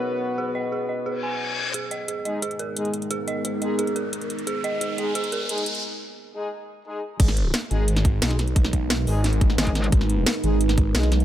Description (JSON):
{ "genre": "dark technical drum and bass", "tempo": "176 BPM", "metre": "4/4", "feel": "straight", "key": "G# minor", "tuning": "A4 = 440 Hz", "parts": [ { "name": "deep dark ambient pad", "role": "sustained chords", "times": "0.0-11.2 s", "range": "G#3 to D#5", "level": "-30 LUFS", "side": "right 1 dB", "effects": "chorus, built-in reverb, sidechain pumping" }, { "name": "warm brass ensemble", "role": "stabs", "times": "0.0-11.1 s", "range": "G#3 to B4", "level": "-31 LUFS", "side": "left 2 dB", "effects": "low-pass filter, dub echo" }, { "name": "dark detuned synth bell", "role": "arpeggios", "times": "0.4-5.4 s", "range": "G#4 to G#5", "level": "-29 LUFS", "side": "right 3 dB", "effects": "chorus, sidechain pumping, low-pass filter, dub echo" }, { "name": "reverse cymbal and riser", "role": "sound effects", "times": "1.2-5.8 s", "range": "none", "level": "-32 LUFS", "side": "left 2 dB", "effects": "none" }, { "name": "drum and bass drum kit", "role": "drums", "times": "1.7-11.2 s", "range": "crash cymbal, hi-hat, snare drum", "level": "-27 LUFS", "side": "equal", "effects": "none" }, { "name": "phased detuned saw bass", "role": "bass", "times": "7.2-11.2 s", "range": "G#1 to B1", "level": "-22 LUFS", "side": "equal", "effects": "phaser, overdrive, sidechain pumping" }, { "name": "electronic kick drum", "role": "drums", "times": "7.2-10.8 s", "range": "none", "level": "-19 LUFS", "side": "equal", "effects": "overdrive" }, { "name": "metallic wobble bass", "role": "bass", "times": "9.6-9.9 s", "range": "G#1", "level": "-24 LUFS", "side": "equal", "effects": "chorus" } ], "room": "light reverb", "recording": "high-pass filter, low-pass filter", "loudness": "-21 LUFS", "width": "side -12 dB against mid", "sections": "0.0-1.7 A section; 1.7-7.2 B section; 7.2-11.2 C section", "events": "filter sweep on synth bell 0.0-1.7, 1.7-7.2; filter sweep 0.0-1.7; reverse cymbal 1.2-1.7; build-up 1.7-7.2; riser 1.7-5.8; filter sweep on brass ensemble 1.7-7.2; break 5.8-7.2; drop 7.2-11.2", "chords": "0.0 B; 1.7 G#madd9" }